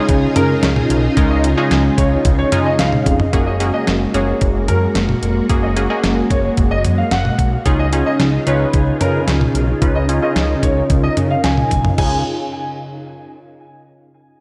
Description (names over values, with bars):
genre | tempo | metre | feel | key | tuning
synth-pop | 111 BPM | 4/4 | straight | Db mixolydian | A4 = 438 Hz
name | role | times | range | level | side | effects
funky polysynth comp | accompaniment | 0.0-12.2 s | Ab3 to Cb5 | -24 LUFS | equal | chorus, low-pass filter
soft string machine | sustained chords | 0.0-12.2 s | Db3 to Bb4 | -23 LUFS | equal | ensemble chorus, low-pass filter
fat analog bass | bass | 0.1-12.2 s | F1 to Db3 | -21 LUFS | equal | none
detuned 8-bit digital drum machine | drums | 0.1-12.1 s | crash cymbal, hi-hat, kick drum, snare drum, toms | -21 LUFS | equal | none
clear concert grand piano | second line | 0.4-12.2 s | Bb4 to Ab5 | -25 LUFS | equal | ensemble chorus, tape echo
room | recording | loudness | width
moderate lush hall reverb, RT60 2.6 s | dreamy mix soaked in reverb | -16 LUFS | mono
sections
0.0-3.3 A section; 3.3-12.0 B section; 12.0-14.1 C section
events
filter sweep 3.3-12.0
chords
0.0 Dbadd9; 3.3 Gbadd9; 7.7 Dbadd9